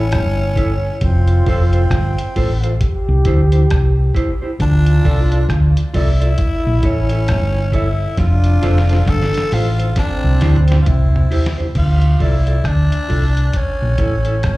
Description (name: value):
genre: roots reggae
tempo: 67 BPM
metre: 4/4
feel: swing 61% on 16ths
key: D minor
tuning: A4 = 440 Hz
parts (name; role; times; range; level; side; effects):
- growling tenor saxophone; melody; 0.0-14.6 s; C4 to A4; -24 LUFS; equal; tape echo, slapback echo
- warm trombone; second line; 0.0-11.3 s; C4 to G4; -25 LUFS; equal; tape echo, slapback echo
- mellow electric guitar; accompaniment; 0.0-14.3 s; E4 to D5; -26 LUFS; right 2 dB; tape echo, slapback echo
- hollow-body short-scale fingered electric bass; bass; 0.0-14.6 s; F1 to D2; -14 LUFS; equal; none
- lo-fi sampler-style drum kit; drums; 0.1-14.6 s; crash cymbal, hi-hat, kick drum, rim click, snare drum, toms; -19 LUFS; equal; none
room: digital ambience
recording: live gig heard through the venue's PA, club reverb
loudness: -13 LUFS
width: side -19 dB against mid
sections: 0.0-11.8 A section; 11.8-14.6 B section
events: drum fill 8.2-11.8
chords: 0.0 A; 1.0 F; 2.8 C; 4.6 Dm; 6.4 A; 8.2 F; 10.0 C; 11.8 Dm; 13.5 A